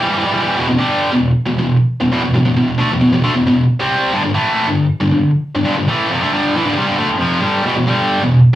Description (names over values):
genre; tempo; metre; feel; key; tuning
metal; 135 BPM; 4/4; straight; E phrygian; A4 = 441 Hz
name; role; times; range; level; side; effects
heavy high-gain guitar; solo; 0.0-8.4 s; E2 to C4; -13 LUFS; equal; distortion
room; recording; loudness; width
moderate small room reverb, RT60 0.6 s; home recording on cassette, small room ambience; -13 LUFS; side -13 dB against mid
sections
0.6-7.7 A section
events
none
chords
0.0 Em; 4.1 G5; 7.7 Em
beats
0.13 | 0.58 1.02 1.47 1.91 | 2.35 2.79 3.24 3.68 | 4.13 4.57 5.01 5.46 | 5.90 6.34 6.79 7.23 | 7.67 8.11